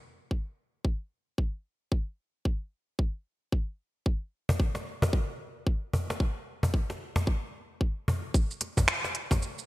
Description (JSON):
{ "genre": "downtempo", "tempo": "112 BPM", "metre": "4/4", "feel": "swing 60% on 16ths", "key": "none", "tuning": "none", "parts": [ { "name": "electronic kick drum", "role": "drums", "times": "0.3-9.4 s", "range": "none", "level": "-27 LUFS", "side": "equal", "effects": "none" }, { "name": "cajon", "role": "percussion", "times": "4.5-9.4 s", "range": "none", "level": "-30 LUFS", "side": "equal", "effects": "none" }, { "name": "organic electronic drum kit", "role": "drums", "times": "8.3-9.7 s", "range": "finger snaps, hi-hat, shaker", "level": "-28 LUFS", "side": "right 2 dB", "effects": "low-pass filter on snare, low-pass filter on hats, low-pass filter on perc, gated reverb" } ], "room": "light reverb", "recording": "bright 1980s-style digital production", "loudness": "-29 LUFS", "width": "side -18 dB against mid", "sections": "0.0-8.3 A section; 8.3-9.7 B section", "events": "none", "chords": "none" }